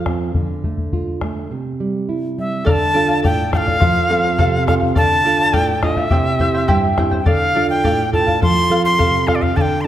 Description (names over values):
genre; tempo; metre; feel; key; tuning
andean folk, Andean ensemble; 104 BPM; 2/4; straight; D minor; A4 = 439 Hz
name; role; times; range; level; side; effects
nylon-string guitar; accompaniment; 0.0-9.9 s; G2 to A4; -20 LUFS; right 3 dB; none
bombo; percussion; 0.1-9.7 s; none; -20 LUFS; left 2 dB; none
bright reedy quena; melody; 2.4-9.9 s; D5 to C6; -18 LUFS; left 1 dB; none
charango; accompaniment; 2.6-9.9 s; E4 to G5; -21 LUFS; equal; none
room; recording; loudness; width
wet scoring stage reverb, RT60 1.5 s; none; -14 LUFS; side -12 dB against mid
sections
0.0-2.7 A section; 2.7-9.9 B section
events
charango solo 0.0-2.7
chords
0.4 Dm; 1.5 C; 2.7 Dm; 3.8 F; 5.0 Dm; 6.1 C; 7.3 Dm; 8.4 F